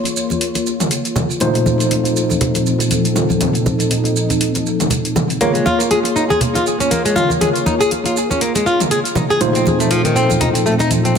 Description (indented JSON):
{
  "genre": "afro house",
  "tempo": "120 BPM",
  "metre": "4/4",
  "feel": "swing 57% on 16ths",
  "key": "Bb minor",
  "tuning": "A4 = 441 Hz",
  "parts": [
    { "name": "warm analog pad", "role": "sustained chords", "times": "0.0-11.2 s", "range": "Bb2 to C6", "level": "-20 LUFS", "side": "left 1 dB", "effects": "chorus" },
    { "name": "tine electric piano", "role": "stabs", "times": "0.0-11.2 s", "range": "Bb2 to Db5", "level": "-21 LUFS", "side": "right 1 dB", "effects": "overdrive, fast stereo tremolo, low-pass filter, analog delay" },
    { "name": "deep house drum kit", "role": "drums", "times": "0.1-11.2 s", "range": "hi-hat, shaker, toms", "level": "-21 LUFS", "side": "equal", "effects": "none" },
    { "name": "congas", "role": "percussion", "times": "0.3-11.2 s", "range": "none", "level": "-23 LUFS", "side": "right 1 dB", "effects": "analog delay" },
    { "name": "flamenco guitar", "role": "arpeggios", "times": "5.4-11.1 s", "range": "Eb3 to Ab4", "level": "-16 LUFS", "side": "left 1 dB", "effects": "analog delay" }
  ],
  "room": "moderate echo chamber reverb, RT60 2.6 s",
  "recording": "echo-heavy mix",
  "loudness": "-14 LUFS",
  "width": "side -6 dB against mid",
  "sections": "0.0-11.2 A section",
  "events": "filter sweep on analog synth pad 0.0-11.2",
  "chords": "0.0 Bbm7; 1.4 F7/Bb; 5.4 Bbm7; 9.4 F7/Bb"
}